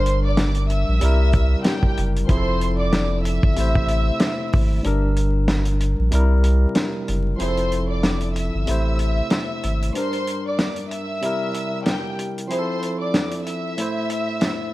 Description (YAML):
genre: hip hop, boom-bap hip-hop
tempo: 94 BPM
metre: 4/4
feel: swing 57% on 16ths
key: unclear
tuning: A4 = 439 Hz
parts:
  - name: dark studio violin section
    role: melody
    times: 0.0-14.7 s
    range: G4 to E6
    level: -26 LUFS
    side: equal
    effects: high-pass filter, low-pass filter
  - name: barky tine electric piano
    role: accompaniment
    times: 0.0-14.7 s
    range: G2 to C5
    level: -26 LUFS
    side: equal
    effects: overdrive, slow stereo tremolo, cassette tape, high-pass filter, low-pass filter
  - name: warm sub bass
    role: bass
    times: 0.0-9.9 s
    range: F1 to C2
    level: -20 LUFS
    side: equal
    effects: none
  - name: warm soul drum kit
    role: drums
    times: 0.1-14.6 s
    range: hi-hat, kick drum, snare drum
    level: -22 LUFS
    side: equal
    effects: none
room: studio ambience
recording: vinyl crackle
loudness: -18 LUFS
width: side -17 dB against mid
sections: 0.0-7.4 A section; 7.4-14.7 A section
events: kick muted 4.8-7.4; break 7.4-14.7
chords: 0.0 Gm; 1.0 C7; 2.3 Fmaj7; 3.6 Am; 4.8 Gm; 6.1 C7; 7.4 Fmaj7; 8.7 Am; 10.0 Gm; 11.2 C7; 12.5 Fmaj7; 13.8 Am